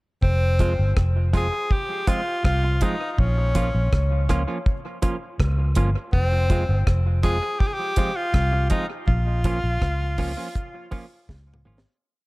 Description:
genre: roots reggae.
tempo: 81 BPM.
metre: 4/4.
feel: straight.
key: F minor.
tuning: A4 = 440 Hz.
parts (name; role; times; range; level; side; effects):
edgy tenor saxophone; melody; 0.2-11.3 s; C4 to Ab4; -27 LUFS; left 1 dB; analog delay.
vintage muted fingered electric bass; bass; 0.2-11.8 s; F1 to Db2; -21 LUFS; equal; none.
deep reggae drum kit; drums; 0.2-12.0 s; hi-hat, kick drum, rim click, snare drum, toms; -23 LUFS; equal; none.
semi-hollow electric guitar; accompaniment; 0.6-11.8 s; F3 to F4; -30 LUFS; right 2 dB; analog delay.
room: light reverb, small room ambience.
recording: echo-heavy mix.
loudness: -20 LUFS.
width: side -22 dB against mid.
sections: 0.2-12.0 A section.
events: fade-out 9.1-12.0; drum fill 11.3-12.0.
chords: 0.2 Fm; 3.2 Bbm; 6.1 Fm; 9.1 Bbm.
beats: | 0.23 0.96 1.71 2.44 | 3.18 3.92 4.66 5.40 | 6.13 6.87 7.61 8.35 | 9.08 9.82 10.56 11.29.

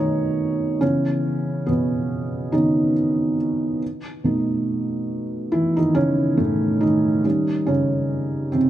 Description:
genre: R&B.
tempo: 70 BPM.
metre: 4/4.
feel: swing 58% on 16ths.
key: C# minor.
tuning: A4 = 440 Hz.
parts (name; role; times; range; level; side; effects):
felt-muted upright piano; solo; 0.0-8.7 s; A2 to C#5; -19 LUFS; right 1 dB; none.
room: light reverb, small room ambience.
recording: none.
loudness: -19 LUFS.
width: side -12 dB against mid.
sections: 0.8-8.7 A section.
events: felt piano solo 0.8-8.7.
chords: 0.0 B9; 0.8 C#m9; 3.8 B9; 7.2 D#7.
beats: | 0.82 1.67 2.53 3.39 | 4.25 5.10 5.96 6.82 | 7.67 8.53.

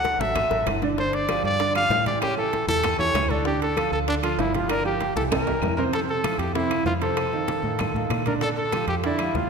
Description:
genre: latin, salsa.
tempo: 193 BPM.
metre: 4/4.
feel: straight.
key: F major.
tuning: A4 = 440 Hz.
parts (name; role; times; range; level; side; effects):
clear trumpet; melody; 0.0-9.5 s; D4 to F#5; -24 LUFS; equal; none.
clear baby grand piano; accompaniment; 0.0-9.5 s; C3 to D5; -28 LUFS; right 5 dB; none.
deep dub fingered electric bass; bass; 0.0-9.5 s; G1 to Bb2; -30 LUFS; left 1 dB; none.
bongos; percussion; 0.0-9.5 s; none; -34 LUFS; left 7 dB; none.
congas; percussion; 0.1-9.5 s; none; -34 LUFS; left 2 dB; none.
timbales; percussion; 0.1-9.3 s; none; -33 LUFS; right 4 dB; none.
claves; percussion; 0.4-9.4 s; none; -39 LUFS; left 4 dB; none.
room: wet scoring stage reverb, RT60 1.5 s.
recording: minimal, uncompressed stereo recording.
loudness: -21 LUFS.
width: side -5 dB against mid.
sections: 0.0-5.9 A section; 5.9-9.5 B section.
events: drum fill 0.5-1.0, 5.3-5.9.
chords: 0.0 D; 1.0 G5; 2.2 A7; 3.5 Dm; 4.7 G5; 5.3 C7; 5.9 Fmaj7; 7.2 F7; 8.4 Bb6.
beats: 0.04 0.35 0.67 | 0.98 1.29 1.60 1.91 | 2.22 2.53 2.84 3.15 | 3.46 3.77 4.08 4.39 | 4.70 5.01 5.32 5.63 | 5.94 6.25 6.56 6.87 | 7.18 7.49 7.80 8.11 | 8.42 8.73 9.04 9.35.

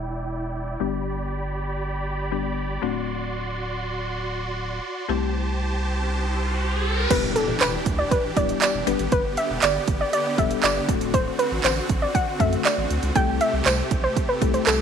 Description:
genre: dance-pop.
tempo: 119 BPM.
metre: 4/4.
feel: straight.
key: E minor.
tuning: A4 = 436 Hz.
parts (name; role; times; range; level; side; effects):
mallet-like synth pluck; accompaniment; 0.0-14.8 s; G3 to B4; -28 LUFS; left 16 dB; chorus, sidechain pumping, low-pass filter.
supersaw chords; sustained chords; 0.0-14.8 s; C3 to C6; -29 LUFS; right 2 dB; sidechain pumping, low-pass filter.
saturated sub bass; bass; 0.0-14.8 s; D1 to F#2; -28 LUFS; equal; sidechain pumping.
riser and impact; sound effects; 6.0-9.1 s; none; -30 LUFS; right 1 dB; none.
soft round pluck; melody; 7.1-14.8 s; A4 to G5; -24 LUFS; equal; chorus, slapback echo.
house drum kit; drums; 7.1-14.8 s; crash cymbal, handclaps, hi-hat, kick drum; -24 LUFS; right 4 dB; overdrive.
tambourine; percussion; 7.6-14.8 s; none; -33 LUFS; right 17 dB; none.
room: light reverb.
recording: 1960s-style stereo with parts hard left and right.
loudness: -21 LUFS.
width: side -7 dB against mid.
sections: 0.0-7.1 A section; 7.1-14.8 B section.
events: filter sweep 0.0-7.1; riser 6.0-7.1; drop 7.1-14.8; impact 7.1-9.1.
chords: 0.0 Em7; 0.8 G; 2.8 D7; 5.1 Am7/C; 7.1 Em7; 8.9 G; 10.9 D7; 13.2 Am7.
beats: 0.05 0.55 | 1.05 1.56 2.06 2.57 | 3.07 3.58 4.08 4.58 | 5.09 5.59 6.10 6.60 | 7.11 7.61 8.11 8.62 | 9.12 9.63 10.13 10.63 | 11.14 11.64 12.15 12.65 | 13.16 13.66 14.16 14.67.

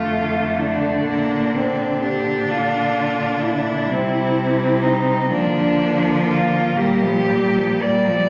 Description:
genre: classical, lyrical piece for cello ensemble.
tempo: 42 BPM (dotted quarters).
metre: 6/8.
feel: rubato.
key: unclear.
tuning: A4 = 439 Hz.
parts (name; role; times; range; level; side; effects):
warm cello; melody; 0.0-8.3 s; D4 to D5; -23 LUFS; equal; none.
rich cello; second line; 0.0-8.3 s; G3 to D4; -25 LUFS; equal; none.
rich cello; accompaniment; 0.0-8.3 s; D3 to G3; -26 LUFS; equal; none.
rich cello; bass; 0.0-8.1 s; F2 to D3; -27 LUFS; equal; none.
room: wet recital hall reverb, RT60 1.5 s.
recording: none.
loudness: -19 LUFS.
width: mono.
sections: 0.0-8.3 A section.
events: none.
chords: 0.0 Dm/F; 1.1 Bb; 3.9 C; 5.3 Bb/D; 6.8 Gm7/Bb.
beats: | 1.07 2.49 | 3.90 5.30 | 6.76.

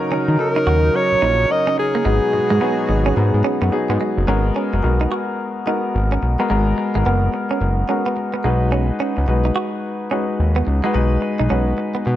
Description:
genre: R&B.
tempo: 108 BPM.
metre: 4/4.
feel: swing 62% on 16ths.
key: G# minor.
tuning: A4 = 439 Hz.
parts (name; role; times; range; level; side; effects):
dark baby grand piano; accompaniment; 0.0-12.2 s; F#3 to B4; -21 LUFS; left 2 dB; none.
chorused pulse-width pad; sustained chords; 0.0-4.3 s; B2 to F#4; -26 LUFS; right 1 dB; none.
direct-recorded clean electric guitar; riff; 0.1-12.1 s; G#3 to F#4; -26 LUFS; right 5 dB; lush chorus.
fat analog bass; bass; 0.1-12.2 s; F#1 to D#3; -18 LUFS; equal; none.
breathy alto saxophone; melody; 0.4-3.7 s; G#4 to D#5; -20 LUFS; equal; none.
room: light reverb, small room ambience.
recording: none.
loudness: -16 LUFS.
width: side -13 dB against mid.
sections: 0.0-4.3 A section; 4.3-12.2 B section.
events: none.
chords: 0.0 D#m7; 2.1 G#m7; 4.3 G#m9; 8.4 B6.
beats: 0.39 0.94 1.50 | 2.06 2.61 3.17 3.72 | 4.28 4.83 5.39 5.95 | 6.50 7.06 7.61 8.17 | 8.72 9.28 9.83 10.39 | 10.95 11.50 12.06.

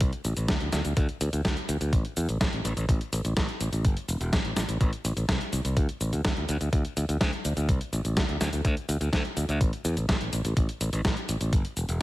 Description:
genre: italo disco.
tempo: 125 BPM.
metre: 4/4.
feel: straight.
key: unclear.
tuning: A4 = 440 Hz.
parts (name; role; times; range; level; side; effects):
modern bright fingered electric bass; bass; 0.0-12.0 s; E1 to E2; -28 LUFS; equal; tube saturation.
clean 12-bit digital drum machine; drums; 0.0-12.0 s; cabasa, hi-hat, snare drum; -31 LUFS; equal; none.
electronic kick drum; drums; 0.0-11.6 s; none; -26 LUFS; equal; none.
room: little or no reverb.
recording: heavily compressed radio sound.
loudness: -25 LUFS.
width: side -17 dB against mid.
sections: 0.0-12.0 A section.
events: none.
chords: none.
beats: | 0.01 0.49 0.97 1.45 | 1.93 2.41 2.89 3.37 | 3.85 4.33 4.81 5.29 | 5.77 6.25 6.73 7.21 | 7.69 8.17 8.65 9.13 | 9.61 10.09 10.57 11.05 | 11.53.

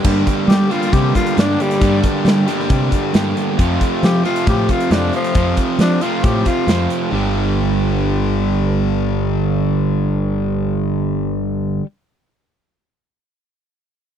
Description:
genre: classic rock.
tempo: 135 BPM.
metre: 4/4.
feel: straight.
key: G minor.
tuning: A4 = 441 Hz.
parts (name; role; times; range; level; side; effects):
picked steel-string acoustic guitar; accompaniment; 0.0-3.6 s; G2 to G4; -27 LUFS; left 9 dB; none.
distorted electric guitar; riff; 0.0-11.9 s; F2 to G3; -22 LUFS; left 16 dB; overdrive.
overdriven semi-hollow guitar; riff; 0.0-11.9 s; F2 to G4; -20 LUFS; right 15 dB; none.
growling fingered electric bass; bass; 0.0-11.8 s; G1 to G3; -19 LUFS; equal; overdrive.
big rock drum kit; drums; 0.0-7.0 s; crash cymbal, hi-hat, kick drum, snare drum; -19 LUFS; equal; none.
growling tenor saxophone; melody; 0.5-6.9 s; F3 to G4; -20 LUFS; left 4 dB; none.
room: little or no reverb.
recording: dry, close 1970s-style studio recording.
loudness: -14 LUFS.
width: side -9 dB against mid.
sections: 0.0-7.1 A section; 7.1-10.7 B section.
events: tenor saxophone solo 0.0-7.1.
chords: 0.0 Gm; 3.6 F; 7.1 G.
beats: | 0.04 0.49 0.93 1.37 | 1.81 2.25 2.70 3.14 | 3.58 4.03 4.47 4.91 | 5.36 5.80 6.24 6.68 | 7.13 7.57 8.02 8.46 | 8.90 9.35 9.79 10.23.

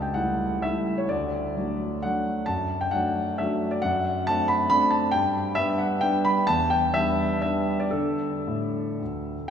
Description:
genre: classical, romantic triple-time dance for piano with dotted rhythms.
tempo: 106-142 BPM.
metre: 3/4.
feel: rubato.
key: D major.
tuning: A4 = 440 Hz.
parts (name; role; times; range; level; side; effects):
warm concert grand piano; solo; 0.0-9.4 s; C#2 to B5; -23 LUFS; equal; none.
room: wet cathedral reverb, RT60 4.7 s.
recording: recorded in a church or concert hall.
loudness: -22 LUFS.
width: side -8 dB against mid.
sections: 0.0-9.5 A section.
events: none.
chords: 0.0 A7/C#; 1.1 D; 2.5 D/F#; 3.8 D7/F#; 5.1 G; 6.5 Em7; 7.9 D5.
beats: 0.15 0.63 | 1.10 1.56 2.03 | 2.48 2.93 3.38 | 3.82 4.26 4.69 | 5.12 5.57 6.04 | 6.48 6.94 7.42 | 7.92 8.46 9.01.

